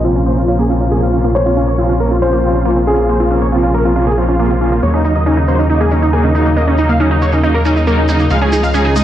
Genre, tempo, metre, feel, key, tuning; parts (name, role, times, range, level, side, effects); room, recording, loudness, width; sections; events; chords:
uplifting trance; 138 BPM; 4/4; straight; Bb minor; A4 = 440 Hz
dense compressed supersaw; melody; 0.0-9.0 s; Eb4 to F5; -16 LUFS; equal; low-pass filter, tape echo
warm baby grand piano; second line; 0.0-4.7 s; Ab4 to Db5; -21 LUFS; left 2 dB; tape echo
rich chamber string section; sustained chords; 0.0-9.0 s; C3 to Eb4; -20 LUFS; left 1 dB
wide unison pluck; arpeggios; 0.0-9.0 s; Ab3 to Eb4; -18 LUFS; right 2 dB; tape echo
gritty driven synth bass; bass; 0.0-9.0 s; Bb1 to Eb2; -15 LUFS; equal; tube saturation
tube shaker; percussion; 4.8-9.0 s; -32 LUFS; right 3 dB
light reverb, digital ambience; low-pass filter; -11 LUFS; side -11 dB against mid
0.0-9.0 A section
filter sweep on supersaw synth 0.0-9.0; filter sweep on synth pluck 0.0-9.0; filter sweep 0.0-9.0
0.0 Bbmadd9; 4.8 Ebm7; 8.3 Dbadd9